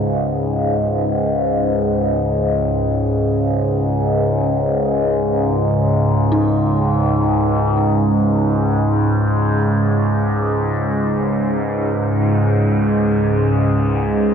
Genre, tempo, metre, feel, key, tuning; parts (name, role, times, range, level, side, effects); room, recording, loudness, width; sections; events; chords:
dark ambient drone; free time; A4 = 440 Hz
deep dark ambient pad; sustained chords; 0.0-14.3 s; C#4 to D#5; -26 LUFS; equal; chorus, built-in reverb
dark detuned synth bell; arpeggios; 0.0-14.3 s; D#4; -26 LUFS; equal; chorus, tape echo
overtone-sweeping drone; drone; 0.0-14.3 s; C#2 to G#2; -16 LUFS; equal; chorus, built-in reverb, phaser
wet huge ambient reverb, RT60 7.2 s; worn, warbling old tape, cassette tape, warbly pitch drift; -15 LUFS; side -7 dB against mid
0.0-14.3 A section
fade-in on ambient pad 0.0-14.3
0.0 C#5